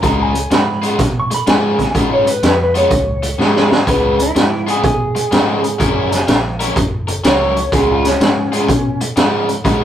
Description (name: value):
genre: electric blues shuffle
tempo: 125 BPM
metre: 4/4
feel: swing 66% on 8ths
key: Db mixolydian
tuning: A4 = 439 Hz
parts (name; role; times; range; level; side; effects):
- electric guitar through a small old amp; melody; 0.0-9.0 s; Db4 to Db6; -18 LUFS; equal; none
- overdriven semi-hollow guitar; riff; 0.0-9.8 s; Db3 to Bb4; -18 LUFS; left 1 dB; none
- vintage muted fingered electric bass; bass; 0.0-9.8 s; Gb1 to Cb3; -22 LUFS; right 1 dB; none
- raw garage drum kit; drums; 0.0-9.8 s; hi-hat, kick drum, snare drum; -16 LUFS; equal; none
room: moderate studio reverb, RT60 0.5 s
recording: rough rehearsal-room recording, tube saturation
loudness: -12 LUFS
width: side -10 dB against mid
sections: 0.0-3.9 A section; 3.9-9.8 B section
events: drum fill 3.4-3.9; clean electric guitar solo 3.9-9.8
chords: 0.0 Db7; 5.8 Gb7; 7.7 Db7